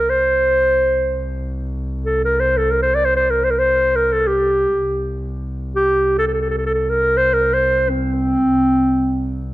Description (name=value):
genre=Turkish makam ensemble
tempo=free time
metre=none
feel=none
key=unclear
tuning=A4 = 440 Hz
part: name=mellow clarinet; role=melody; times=0.0-9.5 s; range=C4 to D5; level=-15 LUFS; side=equal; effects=tape echo
part: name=warm double bass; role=drone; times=0.0-9.5 s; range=C2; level=-24 LUFS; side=equal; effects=none
room=moderate recital hall reverb, RT60 1.5 s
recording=close, detailed microphones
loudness=-15 LUFS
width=side -16 dB against mid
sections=0.0-9.5 A section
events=none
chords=none